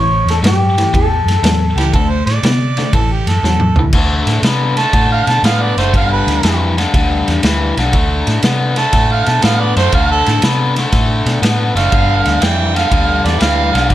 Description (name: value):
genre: electric blues shuffle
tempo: 120 BPM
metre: 4/4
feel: swing 68% on 8ths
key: unclear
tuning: A4 = 439 Hz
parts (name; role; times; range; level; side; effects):
- electric guitar through a small old amp; melody; 0.0-1.9 s; G4 to C#5; -17 LUFS; equal; spring reverb
- biting overdriven guitar; riff; 0.0-13.9 s; G2 to B3; -17 LUFS; left 3 dB; none
- vintage muted fingered electric bass; bass; 0.0-13.9 s; F#1 to C3; -16 LUFS; equal; none
- vintage drum kit; drums; 0.3-13.9 s; crash cymbal, kick drum, ride cymbal, snare drum, toms; -17 LUFS; equal; none
- clear harmonica; second line; 1.8-13.9 s; G4 to A5; -17 LUFS; right 4 dB; overdrive
room: light reverb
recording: none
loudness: -11 LUFS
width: side -13 dB against mid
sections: 0.0-3.9 A section; 3.9-13.9 B section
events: drum fill 3.4-3.9; harmonica solo 3.9-13.9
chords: 0.0 A7(no3); 1.9 D5; 2.9 A; 3.9 D7(no3); 5.9 G7; 7.9 D7(no3); 11.9 G7(no3)